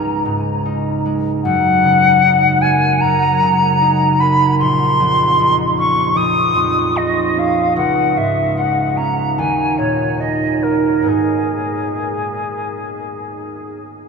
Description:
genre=classical, impressionist duo for flute and harp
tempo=75 BPM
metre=4/4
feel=uneven beats, rubato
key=G# minor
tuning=A4 = 440 Hz
part: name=silver concert flute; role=melody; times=0.0-13.8 s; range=G#4 to D#6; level=-16 LUFS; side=left 2 dB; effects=none
part: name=concert harp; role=accompaniment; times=0.0-14.1 s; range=A#1 to A#4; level=-18 LUFS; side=right 2 dB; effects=none
room=wet huge ambient reverb, RT60 8.3 s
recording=in a vast, echoing space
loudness=-13 LUFS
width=side -5 dB against mid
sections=0.0-14.1 A section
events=none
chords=0.0 Dbsus2; 1.4 F#69; 4.6 A#madd9; 7.8 C#sus2; 9.4 D#5; 11.1 G#m9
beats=0.66 | 1.44 2.23 3.03 3.82 | 4.60 5.39 6.18 6.97 | 7.78 8.58 9.38 10.21 | 11.08 12.01 12.92 13.81

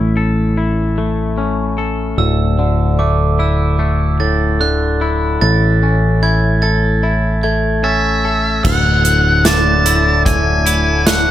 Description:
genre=post-rock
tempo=74 BPM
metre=4/4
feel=straight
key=D lydian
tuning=A4 = 440 Hz
part: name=twangy electric guitar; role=arpeggios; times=0.0-11.3 s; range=D2 to A4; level=-18 LUFS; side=left 3 dB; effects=phaser, analog delay
part: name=overdriven picked electric bass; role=bass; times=0.0-11.3 s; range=D1 to A1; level=-16 LUFS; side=right 1 dB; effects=none
part: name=glockenspiel with soft plastic mallets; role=arpeggios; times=2.2-11.3 s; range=D6 to A7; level=-21 LUFS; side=right 7 dB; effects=analog delay
part: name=octave-fuzz lead guitar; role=melody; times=7.8-11.3 s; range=E5 to A5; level=-16 LUFS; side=equal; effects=distortion, analog delay
part: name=mellow French horn section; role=sustained chords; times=8.6-11.3 s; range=D3 to E4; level=-25 LUFS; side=equal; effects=none
part: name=big rock drum kit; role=drums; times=8.6-11.2 s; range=crash cymbal, hi-hat, kick drum, snare drum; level=-17 LUFS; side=right 1 dB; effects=none
room=light reverb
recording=none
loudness=-12 LUFS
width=side -12 dB against mid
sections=0.0-8.6 A section; 8.6-11.3 B section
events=none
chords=0.0 A; 2.2 Dadd9; 5.4 A; 8.6 Dadd9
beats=0.56 1.37 | 2.18 2.99 3.80 4.61 | 5.42 6.22 7.03 7.83 | 8.64 9.45 10.25 11.06

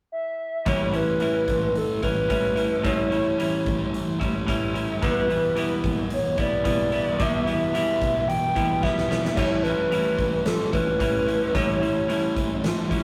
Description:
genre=rock, shoegaze and dream pop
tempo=110 BPM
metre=4/4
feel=straight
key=A mixolydian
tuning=A4 = 438 Hz
part: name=reedy FM lead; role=melody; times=0.1-12.6 s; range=A4 to G5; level=-27 LUFS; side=equal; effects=chorus
part: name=biting overdriven guitar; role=riff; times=0.7-13.0 s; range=A2 to E4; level=-28 LUFS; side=equal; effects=none
part: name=thick fuzz guitar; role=riff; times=0.7-13.0 s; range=E2 to A3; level=-32 LUFS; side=equal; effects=distortion
part: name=huge arena drum kit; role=drums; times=0.7-13.0 s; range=crash cymbal, hi-hat, kick drum, snare drum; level=-31 LUFS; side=equal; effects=none
room=wet stone room reverb, RT60 1.2 s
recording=rough rehearsal-room recording, tube saturation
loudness=-24 LUFS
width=mono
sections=0.7-13.0 A section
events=drum fill 8.8-9.4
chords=0.0 N.C.; 0.7 A7; 5.0 Em; 9.4 A7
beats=0.12 | 0.67 1.21 1.76 2.30 | 2.84 3.39 3.93 4.48 | 5.02 5.56 6.11 6.65 | 7.19 7.74 8.28 8.82 | 9.37 9.91 10.46 11.00 | 11.54 12.09 12.63

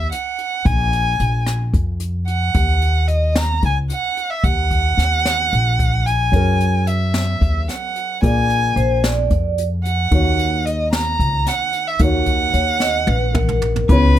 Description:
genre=progressive instrumental, band music in an uneven meter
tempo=222 BPM (eighths)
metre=7/8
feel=straight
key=unclear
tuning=A4 = 440 Hz
part: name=dark violin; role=melody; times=0.0-14.2 s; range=B4 to A#5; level=-20 LUFS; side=right 2 dB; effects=none
part: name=upright bass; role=bass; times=0.0-14.2 s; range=A#1 to F#2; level=-18 LUFS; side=equal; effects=none
part: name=jazz brush drum kit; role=drums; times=0.1-14.2 s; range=hi-hat, kick drum, rim click, snare drum, toms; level=-22 LUFS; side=left 1 dB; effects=none
part: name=dark grand piano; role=accompaniment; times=6.3-14.2 s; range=A#2 to D5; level=-23 LUFS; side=equal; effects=none
part: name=vibraphone with medium mallets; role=second line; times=8.8-9.7, 12.5-13.8 s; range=A#4 to D#5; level=-22 LUFS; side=right 1 dB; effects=none
room=little or no reverb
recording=close, detailed microphones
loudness=-15 LUFS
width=side -12 dB against mid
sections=0.0-13.9 A section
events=drum fill 12.8-13.9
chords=0.0 N.C.; 0.7 A#5; 2.5 D#m; 6.3 F#add9; 8.2 A#7; 10.1 D#m7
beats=0.12 0.39 | 0.66 0.93 1.20 1.47 1.74 2.01 2.28 | 2.55 2.82 3.09 3.36 3.63 3.90 4.17 | 4.44 4.71 4.98 5.25 5.52 5.79 6.06 | 6.33 6.60 6.87 7.14 7.42 7.68 7.96 | 8.22 8.49 8.77 9.04 9.30 9.57 9.85 | 10.12 10.39 10.66 10.93 11.20 11.47 11.74 | 12.01 12.28 12.55 12.81 13.09 13.36 13.62 | 13.89 14.16

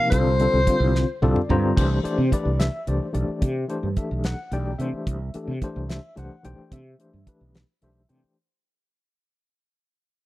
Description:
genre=electric jazz fusion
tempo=73 BPM (dotted quarters)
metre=6/8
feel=straight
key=C lydian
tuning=A4 = 440 Hz
part: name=mellow soprano saxophone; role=melody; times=0.0-1.2 s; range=C5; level=-23 LUFS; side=left 1 dB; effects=tape echo
part: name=overdriven tine electric piano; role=accompaniment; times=0.0-8.4 s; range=C3 to Bb5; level=-26 LUFS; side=left 2 dB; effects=fast tremolo
part: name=mellow fretless electric bass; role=bass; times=0.1-8.3 s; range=B1 to C3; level=-24 LUFS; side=right 1 dB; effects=lush chorus
part: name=damped 70s drum kit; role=drums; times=0.1-8.2 s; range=crash cymbal, hi-hat, kick drum, snare drum, toms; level=-24 LUFS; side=right 1 dB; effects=none
room=little or no reverb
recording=dry, close 1970s-style studio recording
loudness=-21 LUFS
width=side -16 dB against mid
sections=0.0-1.8 A section; 1.8-8.4 B section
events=drum fill 0.9-1.8; tine electric piano fill 0.9-1.8, 7.5-8.4; fade-out 1.8-8.4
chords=0.1 Csus24; 1.8 Cmaj9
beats=| 0.12 0.94 | 1.76 2.59 | 3.41 4.23 | 5.06 5.88 | 6.71 7.53

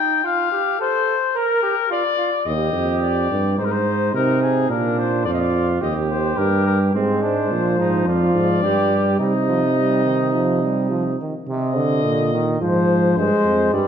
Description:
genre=classical, imitative canzona for brass ensemble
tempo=107 BPM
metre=4/4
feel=straight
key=Eb major, C minor from 6.9 s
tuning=A4 = 441 Hz
part: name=mellow trumpet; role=melody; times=0.0-13.9 s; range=Ab4 to G5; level=-22 LUFS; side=left 8 dB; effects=none
part: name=clear flugelhorn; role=second line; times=0.0-11.2 s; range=C4 to Bb4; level=-24 LUFS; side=right 6 dB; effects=none
part: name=warm bass trombone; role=bass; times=2.5-13.9 s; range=Eb2 to C3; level=-20 LUFS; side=right 2 dB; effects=none
part: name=bright trombone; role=accompaniment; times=7.0-13.9 s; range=C3 to Ab3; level=-20 LUFS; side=equal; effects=none
room=wet recital hall reverb, RT60 1.5 s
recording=dark, warm production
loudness=-17 LUFS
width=side -8 dB against mid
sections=0.0-6.9 A section; 6.9-11.5 B section; 11.5-13.9 C section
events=none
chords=0.2 F; 1.4 Bb; 2.5 Eb; 3.6 Ab; 4.7 Bb; 5.8 Eb; 6.9 Ab; 8.1 Fm; 8.6 G5; 9.2 Cm; 12.6 Fm/Ab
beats=| 0.25 0.80 1.36 1.91 | 2.47 3.03 3.59 4.15 | 4.71 5.27 5.82 6.38 | 6.95 7.51 8.07 8.63 | 9.20 9.77 10.34 10.91 | 11.48 12.05 12.61 13.17 | 13.73

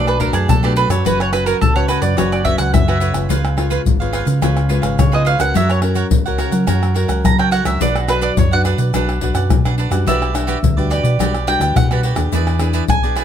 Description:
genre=samba and choro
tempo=106 BPM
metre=4/4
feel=straight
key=B minor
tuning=A4 = 441 Hz
part: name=mandolin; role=melody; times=0.0-13.2 s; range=F#4 to A#5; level=-19 LUFS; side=right 3 dB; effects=none
part: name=cavaquinho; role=accompaniment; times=0.0-13.2 s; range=D4 to F#5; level=-24 LUFS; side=right 7 dB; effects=none
part: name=nylon-string guitar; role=accompaniment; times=0.0-13.2 s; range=G#2 to B4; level=-22 LUFS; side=left 4 dB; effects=none
part: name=hollow-body short-scale fingered electric bass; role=bass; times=0.0-13.2 s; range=F#1 to F#3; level=-18 LUFS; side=right 1 dB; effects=none
part: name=tube shaker, pandeiro, tamborim and surdo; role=percussion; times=0.1-13.2 s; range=none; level=-19 LUFS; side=left 3 dB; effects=none
room=light reverb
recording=close, detailed microphones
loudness=-14 LUFS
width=side -9 dB against mid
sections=0.0-13.2 A section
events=mandolin solo 0.0-13.2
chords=0.0 Bm7; 1.1 F#sus4; 3.3 C#7; 5.6 F#; 7.8 Bm; 10.1 Gmaj7/B; 12.3 E7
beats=0.49 | 1.05 1.61 2.18 2.74 | 3.30 3.87 4.43 4.99 | 5.56 6.12 6.68 7.25 | 7.81 8.38 8.94 9.51 | 10.07 10.63 11.20 11.76 | 12.33 12.89

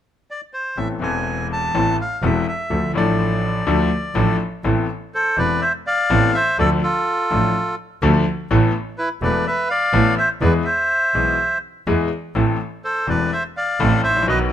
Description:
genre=tango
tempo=124 BPM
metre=4/4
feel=rubato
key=A harmonic minor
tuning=A4 = 443 Hz
part: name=bandoneon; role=melody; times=0.3-14.4 s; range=E4 to A5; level=-20 LUFS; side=equal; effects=none
part: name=bright concert grand piano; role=accompaniment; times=0.8-14.5 s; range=E1 to A4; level=-20 LUFS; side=left 4 dB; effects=none
part: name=rich double bass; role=bass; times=0.8-14.5 s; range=E1 to E2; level=-22 LUFS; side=right 3 dB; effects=none
room=light reverb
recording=minimal, uncompressed stereo recording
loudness=-17 LUFS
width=side -10 dB against mid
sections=0.8-4.6 A section; 4.6-14.5 B section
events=none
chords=0.0 N.C.; 0.8 Amadd9; 2.7 Dm; 4.6 Amadd9; 6.6 Dm; 8.5 Asus2; 10.4 E; 12.4 Am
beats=0.29 | 0.77 1.26 1.75 2.23 | 2.71 3.19 3.67 4.15 | 4.64 5.13 5.62 6.11 | 6.59 7.07 7.55 8.03 | 8.51 8.98 9.46 9.94 | 10.42 10.90 11.38 11.87 | 12.35 12.84 13.32 13.80 | 14.29

